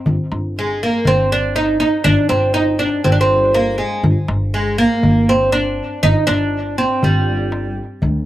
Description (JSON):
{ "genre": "Arabic maqam ensemble", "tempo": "121 BPM", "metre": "4/4", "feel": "straight", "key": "G maqam kurd", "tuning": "A4 = 439 Hz", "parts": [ { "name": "upright bass", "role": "bass", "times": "0.1-8.3 s", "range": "G1 to D2", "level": "-20 LUFS", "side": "equal", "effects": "none" }, { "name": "darbuka", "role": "percussion", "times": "0.1-8.1 s", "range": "none", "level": "-20 LUFS", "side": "left 1 dB", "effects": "none" }, { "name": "oud", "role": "melody", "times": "0.6-7.7 s", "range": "G3 to Eb4", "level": "-16 LUFS", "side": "right 1 dB", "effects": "slapback echo" } ], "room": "little or no reverb", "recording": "recorded outdoors, with no room sound", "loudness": "-14 LUFS", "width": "side -14 dB against mid", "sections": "0.0-8.0 A section", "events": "none", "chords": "none", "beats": "| 0.06 0.56 1.06 1.55 | 2.05 2.55 3.05 3.55 | 4.04 4.54 5.04 5.54 | 6.03 6.53 7.03 7.53 | 8.02" }